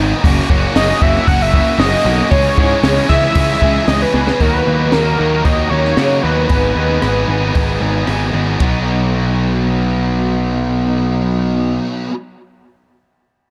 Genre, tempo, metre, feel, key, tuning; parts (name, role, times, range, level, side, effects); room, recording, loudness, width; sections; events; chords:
indie rock; 114 BPM; 4/4; straight; B major; A4 = 440 Hz
cranked stack guitar; riff; 0.0-12.1 s; D#3 to G#4; -22 LUFS; equal; overdrive
thick fuzz guitar; riff; 0.0-12.1 s; D#3 to G#4; -23 LUFS; equal; distortion, ensemble chorus
fuzz picked electric bass; bass; 0.0-11.8 s; F#1 to C#3; -20 LUFS; equal; overdrive
compact cocktail drum kit; drums; 0.2-8.7 s; hi-hat, kick drum, ride cymbal, rim click, snare drum, toms; -19 LUFS; equal
fat analog lead; melody; 0.8-8.1 s; A#4 to F#5; -19 LUFS; equal; chorus
little or no reverb; dark, warm production; -14 LUFS; mono
0.0-4.4 A section; 4.4-8.6 B section; 8.6-12.8 C section
drum fill 4.1
0.2 F#; 2.3 C#m; 4.4 D#m; 6.5 G#m; 8.6 B